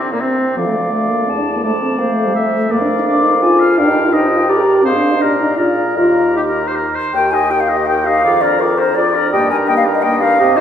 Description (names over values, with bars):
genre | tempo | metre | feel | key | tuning
quick classical-period movement for wind quintet | 167 BPM | 3/4 | rubato | Eb major | A4 = 439 Hz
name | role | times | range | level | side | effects
hollow concert flute | melody | 0.0-10.6 s | C4 to Bb5 | -18 LUFS | left 3 dB | none
warm oboe | second line | 0.0-10.6 s | Bb3 to G5 | -18 LUFS | left 1 dB | none
dark French horn | accompaniment | 0.0-10.6 s | F3 to Ab4 | -17 LUFS | equal | none
dark clarinet | accompaniment | 0.0-10.6 s | Bb3 to C5 | -24 LUFS | right 5 dB | none
warm bassoon | bass | 0.0-10.6 s | D2 to C3 | -21 LUFS | right 2 dB | none
room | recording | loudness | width
wet recital hall reverb, RT60 1.9 s | recorded in a church or concert hall | -12 LUFS | side -9 dB against mid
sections
0.0-7.1 A section; 7.1-10.6 B section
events
none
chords
0.0 C7(no3)/Bb; 0.6 Dm; 1.6 Dm/F; 2.7 Bb7/F; 3.8 Eb/G; 4.9 Fm/Ab; 5.2 Eb/Bb; 5.6 Bb7; 6.0 Eb; 8.2 Bb7/F; 9.3 Eb/G